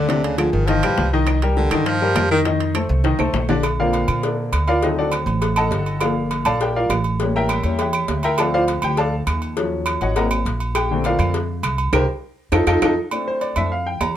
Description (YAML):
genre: Afro-Cuban jazz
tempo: 203 BPM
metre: 4/4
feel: straight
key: Bb major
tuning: A4 = 442 Hz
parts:
  - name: bright baritone saxophone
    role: second line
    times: 0.0-2.4 s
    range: C3 to F3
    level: -22 LUFS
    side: right 2 dB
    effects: none
  - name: clear baby grand piano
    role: accompaniment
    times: 0.0-14.2 s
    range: D3 to Bb5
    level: -20 LUFS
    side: left 2 dB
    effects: none
  - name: upright bass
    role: bass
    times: 0.0-14.2 s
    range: G1 to Bb2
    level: -22 LUFS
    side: equal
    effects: none
  - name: bongos and cowbell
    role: percussion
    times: 0.1-12.9 s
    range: none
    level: -28 LUFS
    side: left 5 dB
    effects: none
  - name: timbales and agogo bells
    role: percussion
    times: 0.1-14.2 s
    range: none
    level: -26 LUFS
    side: right 5 dB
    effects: none
  - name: claves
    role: percussion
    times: 0.4-14.2 s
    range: none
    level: -28 LUFS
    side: right 6 dB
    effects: none
room: moderate club reverb, RT60 0.7 s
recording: none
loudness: -17 LUFS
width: side -11 dB against mid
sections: 0.0-3.6 A section; 3.6-13.1 A section; 13.1-14.2 A section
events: baritone saxophone solo 0.0-3.6; drum fill 3.1-3.6, 11.9-13.1; grand piano solo 3.6-14.2; band accent 11.9-13.1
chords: 0.1 Ddim; 0.7 G7alt; 1.3 Cm11; 2.5 F7; 3.6 Bbmaj7; 4.8 D7b9; 6.0 Gm9; 7.2 A7b9; 8.4 Dm7; 9.6 Ebm7; 10.2 Ab9; 10.8 Bbmaj7; 11.9 C5; 12.5 F7; 13.1 Bbmaj9#11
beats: | 0.09 0.39 0.68 0.98 | 1.27 1.57 1.87 2.16 | 2.46 2.75 3.05 3.35 | 3.64 3.94 4.24 4.53 | 4.83 5.13 5.42 5.72 | 6.02 6.31 6.61 6.91 | 7.20 7.50 7.79 8.09 | 8.39 8.68 8.98 9.28 | 9.57 9.87 10.16 10.46 | 10.76 11.05 11.35 11.64 | 11.94 12.23 12.53 12.82 | 13.12 13.42 13.71 14.01